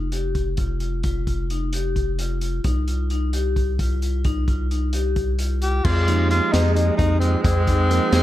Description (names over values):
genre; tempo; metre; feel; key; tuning
progressive instrumental, band music in an uneven meter; 262 BPM (eighths); 7/8; straight; F minor; A4 = 435 Hz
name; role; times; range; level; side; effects
vibraphone with hard mallets; arpeggios; 0.0-8.2 s; Eb4 to Ab4; -28 LUFS; left 5 dB; analog delay
rubbery square bass; bass; 0.0-8.2 s; F1 to F2; -22 LUFS; equal; none
crunchy breakbeat drum kit; drums; 0.1-8.2 s; crash cymbal, hi-hat, kick drum, snare drum; -25 LUFS; equal; none
breathy tenor saxophone; melody; 5.6-8.2 s; C4 to G4; -23 LUFS; equal; analog delay
warm alto saxophone; second line; 5.8-8.2 s; Ab3; -28 LUFS; right 4 dB; analog delay
tine electric piano; accompaniment; 6.1-8.2 s; F3 to Bb4; -26 LUFS; right 5 dB; none
room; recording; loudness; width
little or no reverb; echo-heavy mix; -19 LUFS; side -14 dB against mid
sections
0.0-5.9 A section; 5.9-8.2 B section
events
none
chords
0.0 Fsus2; 2.6 Cm; 5.9 Fm7